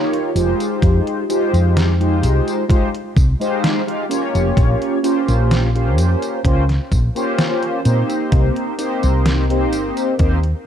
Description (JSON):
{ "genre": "vaporwave", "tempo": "64 BPM", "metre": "4/4", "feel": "straight", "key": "Bb dorian", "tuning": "A4 = 440 Hz", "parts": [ { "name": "mellow synth brass", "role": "accompaniment", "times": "0.0-10.4 s", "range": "Ab3 to F5", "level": "-19 LUFS", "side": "equal", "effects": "wide subtle chorus, vintage 12-bit sampler grit, analog delay" }, { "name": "detuned 8-bit digital drum machine", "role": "drums", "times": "0.1-10.6 s", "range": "hi-hat, snare drum, tambourine", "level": "-24 LUFS", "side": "equal", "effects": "overdrive, studio reverb" }, { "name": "woody fretless electric bass", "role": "bass", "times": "0.4-10.5 s", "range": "F1 to Bb2", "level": "-16 LUFS", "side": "equal", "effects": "tube saturation" }, { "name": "electronic kick drum", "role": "drums", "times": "0.8-10.4 s", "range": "none", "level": "-16 LUFS", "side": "equal", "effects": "overdrive, studio reverb" } ], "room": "digital ambience", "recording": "dark, warm production, cassette tape", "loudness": "-15 LUFS", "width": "side -9 dB against mid", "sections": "0.0-10.7 A section", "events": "fade-out 9.6-10.7", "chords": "0.4 Fm9; 4.6 Bbm69; 8.3 Cm7" }